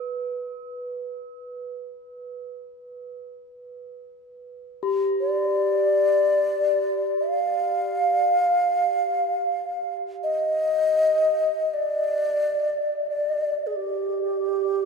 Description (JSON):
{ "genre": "world meditative, free-time meditation music", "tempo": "free time", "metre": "none", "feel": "none", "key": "unclear", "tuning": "A4 = 440 Hz", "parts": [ { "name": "bronze singing bowl", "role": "texture", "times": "0.0-13.8 s", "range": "G4 to B4", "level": "-31 LUFS", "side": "right 1 dB", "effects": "none" }, { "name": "mellow xiao", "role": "melody", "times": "5.2-14.9 s", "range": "G4 to F5", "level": "-21 LUFS", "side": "equal", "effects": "none" } ], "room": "wet cathedral reverb, RT60 5.6 s", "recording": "in a vast, echoing space", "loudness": "-21 LUFS", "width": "side -4 dB against mid", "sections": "0.0-3.7 A section; 3.7-14.9 A section", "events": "none", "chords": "none" }